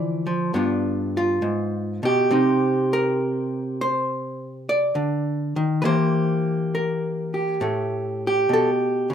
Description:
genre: solo jazz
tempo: 68 BPM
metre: 4/4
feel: swing 68% on 8ths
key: unclear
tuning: A4 = 440 Hz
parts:
  - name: archtop guitar, miked and amplified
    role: solo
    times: 0.0-9.1 s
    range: G2 to D5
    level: -20 LUFS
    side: equal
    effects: none
room: moderate large studio reverb, RT60 0.9 s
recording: none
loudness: -20 LUFS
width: side -8 dB against mid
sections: 0.0-9.1 A section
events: none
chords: 0.0 Dm; 0.5 G7; 2.3 Cm9; 5.8 Edim; 7.6 A7(no3)

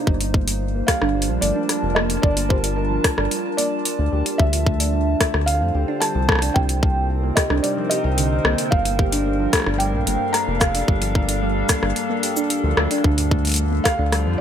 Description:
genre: IDM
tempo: 111 BPM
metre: 4/4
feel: straight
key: G minor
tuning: A4 = 439 Hz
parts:
  - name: warbly tape-like pad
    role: sustained chords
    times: 0.0-14.4 s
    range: C3 to A5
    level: -26 LUFS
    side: left 1 dB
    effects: chorus, built-in reverb, vintage 12-bit sampler grit
  - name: harp-like synth pluck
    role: arpeggios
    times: 0.1-14.4 s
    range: G2 to G4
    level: -26 LUFS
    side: right 3 dB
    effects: chorus, phaser, tape echo
  - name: round analog bass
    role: bass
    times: 0.1-14.4 s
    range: F1 to F2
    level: -22 LUFS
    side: equal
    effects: none
  - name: electronic kick drum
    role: drums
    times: 0.1-14.0 s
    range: none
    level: -19 LUFS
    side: equal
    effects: none
  - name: electro analog drum machine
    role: drums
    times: 0.2-14.2 s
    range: hi-hat, rim click, shaker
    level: -22 LUFS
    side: left 1 dB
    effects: none
  - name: felt-muted upright piano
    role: melody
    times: 0.9-14.4 s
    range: Bb4 to Bb5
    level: -26 LUFS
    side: right 1 dB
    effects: dub echo
room: light reverb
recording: none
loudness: -18 LUFS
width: side -9 dB against mid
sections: 0.1-14.4 A section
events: none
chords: 0.1 Gm9; 4.4 Dm9; 6.3 Cm9; 8.7 Gm9; 13.0 Dm7

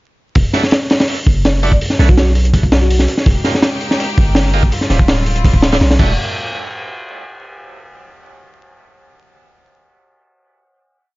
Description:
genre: drum and bass, jungle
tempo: 165 BPM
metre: 4/4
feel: straight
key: unclear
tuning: A4 = 440 Hz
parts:
  - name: long sustained 808-style bass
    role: bass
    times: 0.4-6.2 s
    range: D1 to B1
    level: -14 LUFS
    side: equal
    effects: none
  - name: crunchy breakbeat drum kit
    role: drums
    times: 0.4-6.1 s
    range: crash cymbal, hi-hat, kick drum, snare drum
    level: -14 LUFS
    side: equal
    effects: none
  - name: bright tonewheel organ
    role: stabs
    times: 0.5-6.1 s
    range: D3 to G4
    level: -24 LUFS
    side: right 4 dB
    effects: overdrive, slow rotary speaker, dub echo
  - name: bell-like FM electric piano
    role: melody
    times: 1.6-3.2 s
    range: F#4 to D5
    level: -25 LUFS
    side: equal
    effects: chorus, dub echo
  - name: rich chamber string section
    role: sustained chords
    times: 3.3-6.2 s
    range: G3 to G4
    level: -24 LUFS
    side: left 2 dB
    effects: none
room: small room ambience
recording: vinyl crackle, nothing above 7.5 kHz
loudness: -11 LUFS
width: side -20 dB against mid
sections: 0.4-6.2 drop; 6.2-7.6 final hit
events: drop 0.4-6.2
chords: 0.4 Em11; 1.8 Bm11; 3.3 Fm11; 4.7 Dm11; 6.0 Em11; 6.2 N.C.

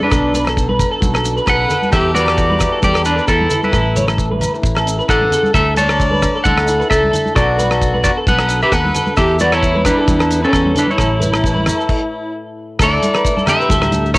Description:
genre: highlife guitar band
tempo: 133 BPM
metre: 4/4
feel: swing 54% on 16ths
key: D major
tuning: A4 = 437 Hz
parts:
  - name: electric guitar at the edge of break-up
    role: melody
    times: 0.0-14.2 s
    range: C#4 to A5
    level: -16 LUFS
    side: equal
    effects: none
  - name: warm violin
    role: second line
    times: 0.0-12.3 s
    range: C#4 to D5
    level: -22 LUFS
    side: left 2 dB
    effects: cassette tape
  - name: flamenco guitar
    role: accompaniment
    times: 0.0-14.2 s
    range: E2 to G4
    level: -25 LUFS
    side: left 2 dB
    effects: cassette tape
  - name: electric guitar through a small old amp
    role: arpeggios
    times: 0.0-14.0 s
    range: A4 to C#5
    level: -22 LUFS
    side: right 2 dB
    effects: analog chorus, cassette tape
  - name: congas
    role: percussion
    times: 0.0-14.2 s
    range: none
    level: -23 LUFS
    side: right 1 dB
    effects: none
  - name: fingered electric bass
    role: bass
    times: 0.1-14.2 s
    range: A1 to E2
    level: -20 LUFS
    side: equal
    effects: none
  - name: damped 70s drum kit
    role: drums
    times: 0.1-14.2 s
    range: crash cymbal, hi-hat, kick drum, rim click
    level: -19 LUFS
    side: equal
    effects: cassette tape
  - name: agogo bells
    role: percussion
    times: 0.1-14.2 s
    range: none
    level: -28 LUFS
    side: left 2 dB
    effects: none
  - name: maracas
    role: percussion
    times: 0.1-14.2 s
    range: none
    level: -30 LUFS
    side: right 2 dB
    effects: none
room: light reverb, small room ambience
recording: home recording on cassette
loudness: -12 LUFS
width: side -21 dB against mid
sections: 0.0-12.8 A section; 12.8-14.2 B section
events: stop 11.9-12.8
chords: 0.1 Bm; 1.9 Em; 3.7 A; 5.5 Dsus2; 7.4 Bm; 9.2 Em; 11.0 A; 12.8 Dsus2

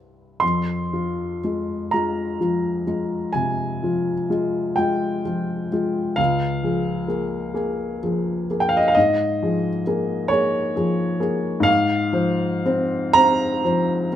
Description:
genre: classical, romantic nocturne for solo piano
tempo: 38-45 BPM (dotted quarters)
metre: 12/8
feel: rubato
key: F minor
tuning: A4 = 442 Hz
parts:
  - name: warm upright piano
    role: solo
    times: 0.0-14.2 s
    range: C2 to C6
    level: -19 LUFS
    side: equal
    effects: none
room: light reverb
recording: close, detailed microphones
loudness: -19 LUFS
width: side -10 dB against mid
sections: 0.4-14.2 A section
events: none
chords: 0.4 Fm; 6.2 Db6; 11.7 Fm/Ab

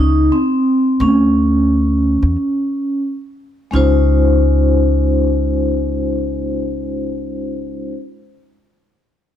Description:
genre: hip hop, jazz-hop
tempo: free time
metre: none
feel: none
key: Db major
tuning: A4 = 441 Hz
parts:
  - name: vibraphone with soft mallets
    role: accompaniment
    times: 0.0-7.9 s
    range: Ab3 to C5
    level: -16 LUFS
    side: equal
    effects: none
  - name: upright bass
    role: bass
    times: 0.0-7.9 s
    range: Db2 to E2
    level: -16 LUFS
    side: equal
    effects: none
room: light reverb, small room ambience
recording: none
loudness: -14 LUFS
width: side -10 dB against mid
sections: 0.0-3.7 A section; 3.7-6.5 B section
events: vibraphone solo 0.0-3.7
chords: 0.0 Dbsus2; 1.0 N.C.; 3.7 Dbmaj9

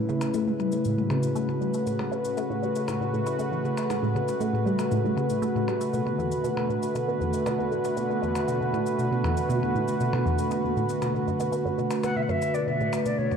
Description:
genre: ambient, sequencer-driven space music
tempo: 118 BPM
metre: 4/4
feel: straight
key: unclear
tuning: A4 = 438 Hz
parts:
  - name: sweeping resonant pad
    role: sustained chords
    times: 0.0-13.4 s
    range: C#3 to B4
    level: -26 LUFS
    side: right 1 dB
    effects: chorus
  - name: resonant blip pluck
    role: riff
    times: 0.0-13.4 s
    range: E2 to E4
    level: -28 LUFS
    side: left 1 dB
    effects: phaser, analog chorus, ping-pong delay
  - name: cabasa and percussion blips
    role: percussion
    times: 0.2-13.2 s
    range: none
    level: -41 LUFS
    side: left 3 dB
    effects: ping-pong delay
  - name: concert flute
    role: melody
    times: 12.0-13.4 s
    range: C#5 to F#5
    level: -29 LUFS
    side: equal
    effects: ping-pong delay
room: wet plate reverb, RT60 3.4 s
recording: dreamy mix soaked in reverb, cassette tape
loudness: -24 LUFS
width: side -7 dB against mid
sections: 0.0-13.4 A section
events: none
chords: 0.0 Aadd9; 5.9 Bm7

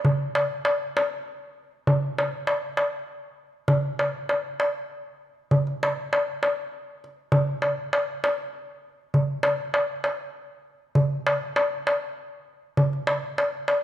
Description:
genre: arabic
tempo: 66 BPM (dotted quarters)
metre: 6/8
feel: straight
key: none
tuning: none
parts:
  - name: darbuka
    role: percussion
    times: 0.0-13.8 s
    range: none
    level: -23 LUFS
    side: equal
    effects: none
room: moderate recital hall reverb, RT60 1.8 s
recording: none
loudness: -23 LUFS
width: side -12 dB against mid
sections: 0.1-13.8 A section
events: none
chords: none

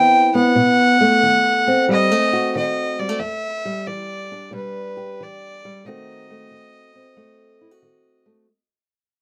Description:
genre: acoustic country blues, solo or duo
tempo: 91 BPM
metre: 4/4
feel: swing 66% on 8ths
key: unclear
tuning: A4 = 439 Hz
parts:
  - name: warm fiddle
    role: melody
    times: 0.0-8.3 s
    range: B4 to G5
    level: -20 LUFS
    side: equal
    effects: none
  - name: fingerpicked old ladder-braced acoustic guitar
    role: accompaniment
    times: 0.0-8.5 s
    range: E2 to G4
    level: -22 LUFS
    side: equal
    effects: none
room: little or no reverb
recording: close, detailed microphones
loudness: -17 LUFS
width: mono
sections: 0.0-8.5 A section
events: fade-out 0.0-8.5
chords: 0.0 Cmaj7; 0.6 B7b9; 3.2 Em7; 5.8 B7b9

